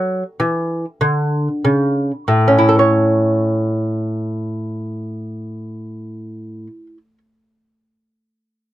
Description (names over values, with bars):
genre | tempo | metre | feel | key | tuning
classical, baroque-style dance for lute | 49 BPM | 3/4 | rubato | A major | A4 = 441 Hz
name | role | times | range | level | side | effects
lute | solo | 0.0-7.2 s | A2 to C#5 | -16 LUFS | equal | none
room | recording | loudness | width
little or no reverb | close, detailed microphones | -15 LUFS | side -14 dB against mid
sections
0.0-2.3 A section; 2.3-6.0 B section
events
slowing down 0.0-2.3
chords
0.0 A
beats
1.02 | 2.29 3.51 4.73